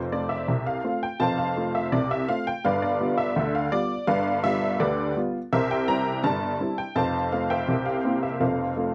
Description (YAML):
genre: ragtime piano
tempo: 83 BPM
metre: 2/4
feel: straight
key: F major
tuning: A4 = 440 Hz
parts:
  - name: honky-tonk upright piano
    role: solo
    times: 0.0-8.9 s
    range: F1 to Bb5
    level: -25 LUFS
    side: equal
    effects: none
room: light reverb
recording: dry, close 1970s-style studio recording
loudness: -25 LUFS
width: mono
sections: 0.0-8.9 A section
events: none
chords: 0.0 F; 2.6 G7; 5.5 C7; 7.0 F; 7.7 C7; 8.4 F